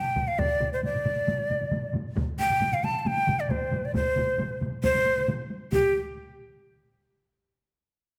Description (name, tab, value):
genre	japanese traditional, taiko drum ensemble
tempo	135 BPM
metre	4/4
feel	straight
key	G suspended pentatonic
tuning	A4 = 440 Hz
part	breathy bright shakuhachi	melody	0.0-5.9 s	G4 to A5	-28 LUFS	equal	none
part	solo taiko drums	percussion	0.1-5.9 s	none	-37 LUFS	equal	none
part	solo taiko drums	percussion	0.2-5.9 s	none	-37 LUFS	equal	none
part	taiko ensemble	percussion	0.2-6.1 s	none	-38 LUFS	equal	none
part	taiko ensemble	percussion	0.2-6.1 s	none	-37 LUFS	equal	none
room	moderate recital hall reverb, RT60 1.5 s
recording	none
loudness	-27 LUFS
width	mono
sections	0.0-5.7 A section; 5.7-7.5 B section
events	none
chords	none